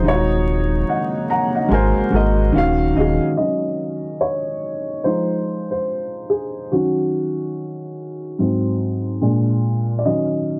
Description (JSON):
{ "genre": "lo-fi hip hop", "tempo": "72 BPM", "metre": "4/4", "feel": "swing 59% on 16ths", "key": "Eb dorian", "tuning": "A4 = 439 Hz", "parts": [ { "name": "dark upright piano", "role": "accompaniment", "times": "0.0-10.6 s", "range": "Ab2 to Bb5", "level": "-21 LUFS", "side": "equal", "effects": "cassette tape, low-pass filter" }, { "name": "deep dark ambient pad", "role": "sustained chords", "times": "0.0-3.4 s", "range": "C3 to F5", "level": "-31 LUFS", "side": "equal", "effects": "chorus, built-in reverb, low-pass filter" }, { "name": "sub bass with octave", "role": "bass", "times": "0.0-3.2 s", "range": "Eb1 to Ab1", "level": "-22 LUFS", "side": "equal", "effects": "none" } ], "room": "moderate small room reverb, RT60 0.5 s", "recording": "vinyl crackle, low-pass filter", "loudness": "-20 LUFS", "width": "mono", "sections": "0.0-3.4 A section; 3.4-10.6 B section", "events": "upright piano fill 0.9-3.4; upright piano solo 3.4-10.6; filter sweep 3.4-10.6", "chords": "0.0 Ebm7; 1.7 Ab9; 2.5 Ebm9; 3.4 Ebm7; 5.0 Fm7; 6.7 Ebm7; 8.4 Ab7; 9.2 Bb7; 10.0 Ebm7", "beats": "| 0.04 0.88 1.71 2.54 | 3.38 4.21 5.04 5.88 | 6.71 7.54 8.38 9.21 | 10.04" }